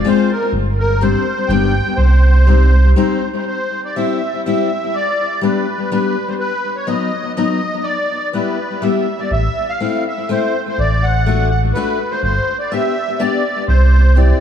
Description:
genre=alpine folk, alpine dance band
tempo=124 BPM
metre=3/4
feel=rubato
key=C minor, C major from 3.5 s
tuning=A4 = 439 Hz
part: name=musette accordion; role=melody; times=0.0-14.4 s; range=Bb4 to G5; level=-20 LUFS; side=equal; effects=tape echo
part: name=fingerpicked steel-string acoustic guitar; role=accompaniment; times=0.0-14.4 s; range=F#3 to G4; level=-19 LUFS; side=left 5 dB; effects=tape echo
part: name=rubbery square bass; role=bass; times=0.0-2.9, 9.3-14.3 s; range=G1 to C2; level=-12 LUFS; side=right 1 dB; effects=none
room=light reverb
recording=echo-heavy mix, studio reverb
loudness=-14 LUFS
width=side -8 dB against mid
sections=0.0-3.5 A section; 3.5-14.4 B section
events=none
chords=0.0 Fm; 0.5 Gsus4; 1.5 G; 2.0 Cm; 3.5 C; 4.9 G; 6.4 B; 7.8 Em; 9.3 Am; 10.8 D/A; 12.2 G; 13.7 C

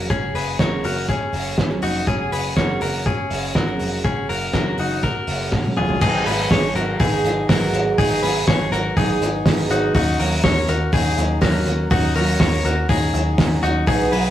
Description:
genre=jangly indie pop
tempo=122 BPM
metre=4/4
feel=straight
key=unclear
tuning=A4 = 439 Hz
part: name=picked twelve-string acoustic guitar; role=accompaniment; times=0.0-14.3 s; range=G#2 to A#4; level=-25 LUFS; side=right 4 dB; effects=none
part: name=direct-recorded clean electric guitar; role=arpeggios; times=0.0-14.3 s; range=C#4 to C#5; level=-22 LUFS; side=left 3 dB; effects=slapback echo
part: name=vintage muted picked electric bass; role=bass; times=0.0-14.3 s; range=E#1 to D#2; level=-24 LUFS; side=equal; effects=tube saturation
part: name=cloth-damped thuddy drum kit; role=drums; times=0.1-14.2 s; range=crash cymbal, hi-hat, kick drum, snare drum, toms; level=-21 LUFS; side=equal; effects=none
room=moderate small room reverb, RT60 0.5 s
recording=rough rehearsal-room recording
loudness=-17 LUFS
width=side -12 dB against mid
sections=0.0-6.0 A section; 6.0-14.3 B section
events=drum fill 5.5-6.0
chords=0.0 Bmaj7(no3) (rootless); 6.0 G#m7; 9.9 D#m7

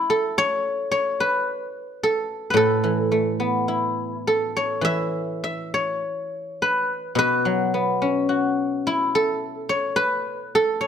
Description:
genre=chinese traditional, Chinese solo plucked strings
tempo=54 BPM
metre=2/4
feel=rubato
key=A gong mode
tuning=A4 = 440 Hz
part: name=guzheng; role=solo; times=0.0-10.9 s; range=A2 to E5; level=-20 LUFS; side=equal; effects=none
room=light reverb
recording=close, detailed microphones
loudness=-20 LUFS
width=side -8 dB against mid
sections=0.0-10.9 A section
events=none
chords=none

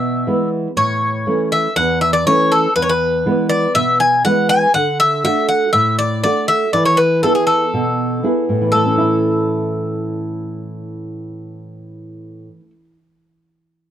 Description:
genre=greek folk, Greek bouzouki band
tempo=120 BPM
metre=4/4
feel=straight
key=A major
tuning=A4 = 438 Hz
part: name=Greek bouzouki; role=melody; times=0.0-12.7 s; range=G#4 to G#5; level=-16 LUFS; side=left 1 dB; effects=none
part: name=nylon-string guitar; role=accompaniment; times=0.0-13.0 s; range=E2 to G#4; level=-18 LUFS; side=right 1 dB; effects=none
room=light reverb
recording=dry, close 1970s-style studio recording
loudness=-14 LUFS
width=side -10 dB against mid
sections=0.0-8.7 A section; 8.7-12.7 B section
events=none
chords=0.0 E; 0.8 A; 2.8 E; 4.7 D; 6.7 E; 8.7 A

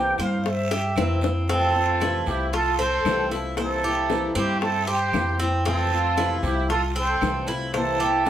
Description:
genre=latin, Cuban son and guajira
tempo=115 BPM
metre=4/4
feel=straight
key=F major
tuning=A4 = 441 Hz
part: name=trumpet with plunger mute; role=melody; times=0.0-8.3 s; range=G4 to G5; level=-26 LUFS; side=right 4 dB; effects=none
part: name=fingerpicked swing-style acoustic guitar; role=accompaniment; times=0.0-8.3 s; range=C3 to F4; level=-30 LUFS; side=left 2 dB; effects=none
part: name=Cuban tres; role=arpeggios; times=0.0-8.3 s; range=C4 to C5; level=-27 LUFS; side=right 1 dB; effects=none
part: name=upright bass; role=bass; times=0.0-8.3 s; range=C2 to G2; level=-27 LUFS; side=equal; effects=none
part: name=bongos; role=percussion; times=0.2-8.3 s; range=none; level=-30 LUFS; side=left 5 dB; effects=none
part: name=claves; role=percussion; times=0.2-8.0 s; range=none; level=-39 LUFS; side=right 6 dB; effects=none
part: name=guiro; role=percussion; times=0.2-8.3 s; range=none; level=-40 LUFS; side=right 3 dB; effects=none
part: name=rich studio violin section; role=second line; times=1.5-8.3 s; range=E4 to A4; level=-32 LUFS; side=left 4 dB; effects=none
room=moderate large studio reverb, RT60 1.0 s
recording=band playing live in one room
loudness=-21 LUFS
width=side -10 dB against mid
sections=0.0-1.5 A section; 1.5-8.3 B section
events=muted trumpet solo 0.0-1.5; drum fill 0.7-1.5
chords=0.0 C7; 1.5 Fmaj7; 3.6 C7; 5.7 Fmaj7; 7.7 C7

